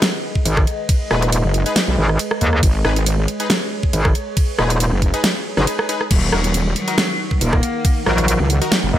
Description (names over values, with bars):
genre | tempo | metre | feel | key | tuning
heavy wobble dubstep | 138 BPM | 4/4 | swing 54% on 16ths, half-time | unclear | A4 = 443 Hz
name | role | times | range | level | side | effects
evolving wavetable pad | sustained chords | 0.0-9.0 s | Eb3 to Gb5 | -27 LUFS | equal | chorus, built-in reverb, sidechain pumping
dubstep drum kit | drums | 0.0-8.8 s | crash cymbal, hi-hat, ride cymbal, rim click, snare drum | -21 LUFS | right 1 dB | none
electronic kick drum | drums | 0.4-7.9 s | none | -17 LUFS | equal | none
metallic wobble bass | bass | 0.5-9.0 s | Eb1 to Eb2 | -16 LUFS | equal | chorus, overdrive
supersaw stab | stabs | 1.1-8.7 s | Eb4 to Cb5 | -26 LUFS | left 2 dB | dub echo
wobble bass | bass | 1.4-8.9 s | Eb1 to Db2 | -18 LUFS | equal | chorus, overdrive
clear cello | melody | 6.1-9.0 s | Eb3 to Bb3 | -24 LUFS | left 1 dB | dub echo
room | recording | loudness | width
light reverb, digital ambience | none | -15 LUFS | side -12 dB against mid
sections
0.0-9.0 A section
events
break 5.7-6.1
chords
0.0 Abm; 6.1 Ebm